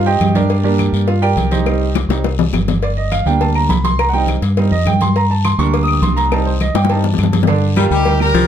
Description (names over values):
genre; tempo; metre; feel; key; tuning
latin, salsa; 206 BPM; 4/4; straight; unclear; A4 = 441 Hz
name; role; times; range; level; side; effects
bright concert grand piano; accompaniment; 0.0-8.4 s; D3 to Eb6; -17 LUFS; right 4 dB; none
deep dub fingered electric bass; bass; 0.0-8.5 s; G1 to G2; -16 LUFS; left 1 dB; none
congas; percussion; 0.1-8.5 s; none; -22 LUFS; right 1 dB; none
claves; percussion; 0.2-8.3 s; none; -30 LUFS; left 10 dB; none
cowbell and bongos; percussion; 0.2-8.5 s; none; -22 LUFS; left 7 dB; none
guiro; percussion; 0.2-8.5 s; none; -32 LUFS; left 7 dB; none
brilliant horn section; melody; 7.8-8.5 s; D4 to Bb4; -17 LUFS; left 2 dB; none
bright baritone saxophone; second line; 7.8-8.5 s; F3 to G3; -18 LUFS; left 8 dB; none
room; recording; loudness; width
moderate studio reverb, RT60 0.6 s; dark, warm production; -12 LUFS; side -9 dB against mid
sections
0.0-7.5 A section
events
grand piano solo 0.0-7.5; drum fill 2.0-2.8, 6.8-7.5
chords
0.0 Cm; 2.8 Gm; 4.0 Cm; 5.2 Gm; 6.3 Cm; 7.5 Gm